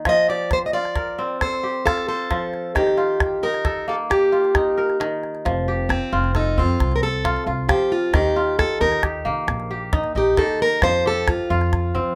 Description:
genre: west african traditional, West African string and xylophone music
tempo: 89 BPM (dotted quarters)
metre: 12/8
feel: straight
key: F mixolydian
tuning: A4 = 440 Hz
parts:
  - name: kora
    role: arpeggios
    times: 0.0-12.2 s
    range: Eb3 to C5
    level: -27 LUFS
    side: equal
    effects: none
  - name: picked plugged-in steel-string acoustic guitar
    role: melody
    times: 0.1-12.2 s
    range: C4 to Eb5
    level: -23 LUFS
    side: equal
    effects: none
  - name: calabash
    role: percussion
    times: 0.1-11.8 s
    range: none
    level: -24 LUFS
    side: equal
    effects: none
  - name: upright bass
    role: bass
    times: 5.5-12.1 s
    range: F1 to F3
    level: -26 LUFS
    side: equal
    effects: none
room: light reverb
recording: none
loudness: -21 LUFS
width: mono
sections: 0.0-5.4 A section; 5.4-12.2 B section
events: steel-string acoustic guitar solo 5.4-12.2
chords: 0.1 F; 2.8 Eb; 5.4 F; 8.1 Eb; 10.8 F5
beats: | 0.06 0.73 1.41 2.08 | 2.76 3.43 4.10 4.78 | 5.45 6.12 6.79 7.46 | 8.13 8.81 9.48 10.15 | 10.82 11.50

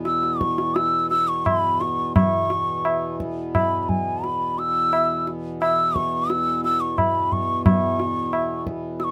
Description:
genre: indian classical, Hindustani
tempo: 87 BPM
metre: 4/4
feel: straight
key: unclear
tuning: A4 = 438 Hz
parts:
  - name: pedal harmonium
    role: drone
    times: 0.0-9.1 s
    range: E2 to B2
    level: -31 LUFS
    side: equal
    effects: none
  - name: hollow bansuri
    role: melody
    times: 0.1-9.1 s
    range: G#5 to E6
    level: -24 LUFS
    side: equal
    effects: none
  - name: tabla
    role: percussion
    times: 0.1-9.1 s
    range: none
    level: -25 LUFS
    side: equal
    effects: none
room: light reverb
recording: close, detailed microphones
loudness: -22 LUFS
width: mono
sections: 0.0-2.2 A section; 2.2-9.1 B section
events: speeding up 0.0-9.1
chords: none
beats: 0.05 0.75 1.46 | 2.16 2.85 3.55 4.24 | 4.93 5.62 6.30 6.98 | 7.66 8.33 9.00

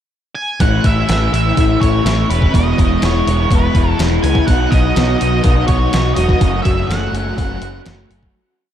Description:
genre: rock, shoegaze and dream pop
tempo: 124 BPM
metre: 4/4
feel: straight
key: A lydian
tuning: A4 = 440 Hz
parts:
  - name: octave-fuzz lead guitar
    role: melody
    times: 0.4-7.8 s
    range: B4 to G#5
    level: -21 LUFS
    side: right 2 dB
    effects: distortion, diffuse ambient delay
  - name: raw garage guitar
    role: riff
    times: 0.6-8.3 s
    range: E2 to F#4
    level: -17 LUFS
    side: left 1 dB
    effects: overdrive, wide subtle chorus
  - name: growling picked electric bass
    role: bass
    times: 0.6-8.3 s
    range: E1 to C#2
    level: -17 LUFS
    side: equal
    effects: overdrive
  - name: detuned 8-bit digital drum machine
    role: drums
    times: 0.6-8.3 s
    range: hi-hat, kick drum, snare drum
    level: -17 LUFS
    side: equal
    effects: none
room: light reverb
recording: none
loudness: -12 LUFS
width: side -10 dB against mid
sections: 0.0-0.6 pickup bar; 0.6-8.4 verse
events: fade-out 6.4-8.4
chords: 0.0 N.C.; 0.6 A; 2.5 E; 4.5 Badd9; 6.4 F#m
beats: 0.12 | 0.61 1.09 1.57 2.06 | 2.54 3.03 3.51 4.00 | 4.48 4.96 5.45 5.93 | 6.42 6.90 7.39 7.87

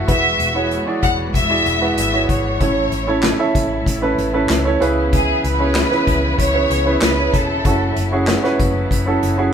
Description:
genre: piano-driven pop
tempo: 95 BPM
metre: 4/4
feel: straight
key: A major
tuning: A4 = 440 Hz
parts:
  - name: clear grand piano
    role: accompaniment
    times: 0.0-9.5 s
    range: A2 to E5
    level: -19 LUFS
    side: right 3 dB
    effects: none
  - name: warm studio string section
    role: sustained chords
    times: 0.0-9.5 s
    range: C#3 to F#4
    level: -27 LUFS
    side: left 3 dB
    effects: none
  - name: vintage muted fingered electric bass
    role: bass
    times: 0.0-9.5 s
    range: E1 to C#2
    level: -23 LUFS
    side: left 1 dB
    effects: none
  - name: warm studio violin section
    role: melody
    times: 0.1-8.0 s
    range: G#4 to F#5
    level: -19 LUFS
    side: equal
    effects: none
  - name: unplugged drum kit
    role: drums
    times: 0.1-9.4 s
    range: handclaps, hi-hat, kick drum, snare drum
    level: -20 LUFS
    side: left 1 dB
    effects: none
room: moderate large studio reverb, RT60 0.9 s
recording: band playing live in one room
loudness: -15 LUFS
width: side -8 dB against mid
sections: 0.0-9.5 A section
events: none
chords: 0.1 Eadd9; 2.6 A; 4.8 C#m7; 7.7 F#m7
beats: | 0.09 0.71 1.35 1.98 | 2.61 3.24 3.87 4.50 | 5.13 5.76 6.39 7.02 | 7.65 8.28 8.91

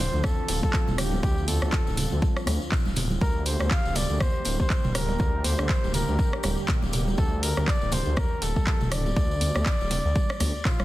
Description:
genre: afro house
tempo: 121 BPM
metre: 4/4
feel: swing 58% on 16ths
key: unclear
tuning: A4 = 438 Hz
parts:
  - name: trumpet with bucket mute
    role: melody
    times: 0.0-10.8 s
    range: F4 to F5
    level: -32 LUFS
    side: left 1 dB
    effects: tape echo
  - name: warm analog pad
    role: sustained chords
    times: 0.0-10.8 s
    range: D3 to G4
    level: -36 LUFS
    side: right 2 dB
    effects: chorus, sidechain pumping
  - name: dark detuned saw bass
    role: bass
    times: 0.0-10.8 s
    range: D1 to D2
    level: -27 LUFS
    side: equal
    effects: sidechain pumping
  - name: congas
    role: percussion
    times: 0.1-10.8 s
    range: none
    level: -34 LUFS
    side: right 3 dB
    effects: none
  - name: tambourine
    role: percussion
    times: 0.1-10.8 s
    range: none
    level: -39 LUFS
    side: left 4 dB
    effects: none
  - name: afro-pop drum kit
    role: drums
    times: 0.2-10.8 s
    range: handclaps, hi-hat, rim click, toms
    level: -31 LUFS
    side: equal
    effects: small room ambience
  - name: electronic kick drum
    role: drums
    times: 0.2-10.8 s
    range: none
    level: -25 LUFS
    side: equal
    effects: overdrive, small room ambience
  - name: djembe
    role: percussion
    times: 0.2-10.5 s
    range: none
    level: -35 LUFS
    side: left 1 dB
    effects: none
room: small room ambience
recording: dense, heavily limited modern master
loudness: -22 LUFS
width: side -16 dB against mid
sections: 0.0-10.8 A section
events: drum fill 10.4-10.8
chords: 0.0 Dm7; 3.2 Gm/D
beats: 0.24 0.73 | 1.23 1.73 2.22 2.72 | 3.21 3.71 4.21 4.70 | 5.20 5.69 6.19 6.68 | 7.18 7.68 8.17 8.67 | 9.16 9.66 10.16 10.65

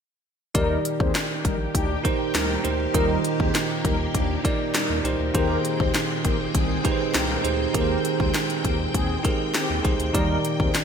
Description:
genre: 1980s-style pop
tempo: 100 BPM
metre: 4/4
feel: straight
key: Eb major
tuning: A4 = 440 Hz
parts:
  - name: bell-like tine electric piano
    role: accompaniment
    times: 0.5-10.8 s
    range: Eb3 to Eb5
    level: -26 LUFS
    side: moving between equal and right 8 dB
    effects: auto-pan
  - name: string machine, violins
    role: sustained chords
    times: 0.5-10.8 s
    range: Bb2 to G5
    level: -30 LUFS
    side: left 2 dB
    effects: ensemble chorus
  - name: mellow synth brass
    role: stabs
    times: 0.5-10.7 s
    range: Eb3 to C5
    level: -30 LUFS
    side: left 3 dB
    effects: chorus
  - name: house drum kit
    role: drums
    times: 0.5-10.8 s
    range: hi-hat, kick drum, snare drum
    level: -25 LUFS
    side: left 1 dB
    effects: gated reverb
  - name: round analog bass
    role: bass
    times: 0.6-10.7 s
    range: Ab1 to Eb2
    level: -29 LUFS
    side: left 1 dB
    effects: none
room: moderate lush hall reverb, RT60 1.7 s, digital ambience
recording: bright 1980s-style digital production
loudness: -21 LUFS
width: side -7 dB against mid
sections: 0.5-10.8 A section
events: none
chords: 0.5 Ebmaj7; 5.3 Abmaj7; 10.1 Ebmaj7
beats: | 0.54 1.14 1.74 2.34 | 2.94 3.54 4.14 4.74 | 5.34 5.94 6.54 7.14 | 7.74 8.34 8.94 9.54 | 10.14 10.74

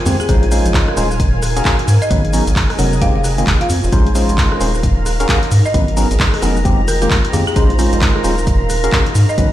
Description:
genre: UK garage, two-step garage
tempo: 132 BPM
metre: 4/4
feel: swing 62% on 16ths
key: Bb minor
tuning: A4 = 440 Hz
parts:
  - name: soft string machine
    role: sustained chords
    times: 0.0-9.5 s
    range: Ab5 to Bb5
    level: -29 LUFS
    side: equal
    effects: ensemble chorus, sidechain pumping
  - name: airy breathy pad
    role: texture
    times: 0.0-9.5 s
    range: Eb4 to C6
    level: -25 LUFS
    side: right 1 dB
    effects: chorus, sidechain pumping
  - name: percussive organ stab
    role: stabs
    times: 0.1-9.5 s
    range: Eb3 to F5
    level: -20 LUFS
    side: equal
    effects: chorus, tape echo
  - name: rubbery square bass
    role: bass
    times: 0.1-9.5 s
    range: Eb1 to Ab2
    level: -16 LUFS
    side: equal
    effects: sidechain pumping
  - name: punchy analog drum machine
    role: drums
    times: 0.1-9.5 s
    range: handclaps, hi-hat, rim click, shaker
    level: -21 LUFS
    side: equal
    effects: none
  - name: folk marimba with hard mallets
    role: melody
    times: 0.2-9.4 s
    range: Ab4 to Gb5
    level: -23 LUFS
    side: left 1 dB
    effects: tape echo
  - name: electronic kick drum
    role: drums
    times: 0.3-9.5 s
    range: none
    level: -15 LUFS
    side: equal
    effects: none
room: light reverb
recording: played on a big sound system in a bare room, large studio reverb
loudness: -12 LUFS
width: side -13 dB against mid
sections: 0.0-9.5 A section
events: none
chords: 0.3 Bbm11; 1.2 Ebm11; 1.9 Abm11; 3.0 Fm11; 3.9 Bbm11; 4.8 Ebm11; 5.5 Abm11; 6.7 Fm11; 7.6 Bbm11; 8.5 Ebm11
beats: | 0.29 0.74 1.20 1.65 | 2.11 2.56 3.02 3.47 | 3.92 4.38 4.83 5.29 | 5.74 6.20 6.65 7.11 | 7.56 8.02 8.47 8.92 | 9.38

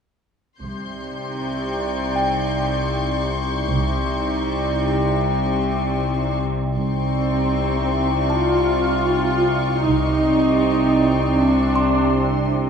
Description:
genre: cinematic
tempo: 78 BPM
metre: 4/4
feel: straight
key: C dorian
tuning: A4 = 445 Hz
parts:
  - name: warbly tape-like pad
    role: sustained chords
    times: 1.0-12.7 s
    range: C4 to G5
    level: -24 LUFS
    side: left 1 dB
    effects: chorus, built-in reverb
  - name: rich symphonic cello section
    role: bass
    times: 0.6-12.7 s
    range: C3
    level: -26 LUFS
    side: right 2 dB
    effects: none
  - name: warm symphonic double bass section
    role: bass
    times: 0.6-10.6 s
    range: C2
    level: -26 LUFS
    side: right 3 dB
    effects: none
  - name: analog drone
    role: drone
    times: 1.2-12.7 s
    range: C2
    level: -24 LUFS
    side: equal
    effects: chorus
  - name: warm symphonic violin section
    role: texture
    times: 0.6-12.5 s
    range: C6 to G6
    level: -30 LUFS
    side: left 5 dB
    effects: none
  - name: music box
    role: texture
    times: 2.2-12.7 s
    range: G5 to C6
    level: -28 LUFS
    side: equal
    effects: none
  - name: dark symphonic viola section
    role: accompaniment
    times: 6.8-12.5 s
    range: C4 to F4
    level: -20 LUFS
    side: right 1 dB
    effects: none
room: wet scoring stage reverb, RT60 1.7 s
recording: heard from further back in the room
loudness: -18 LUFS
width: side -7 dB against mid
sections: 0.6-6.8 A section; 6.8-12.7 B section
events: none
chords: 0.6 Cmadd9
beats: | 0.61 1.38 2.15 2.92 | 3.69 4.46 5.22 5.99 | 6.76 7.53 8.30 9.07 | 9.84 10.61 11.38 12.15

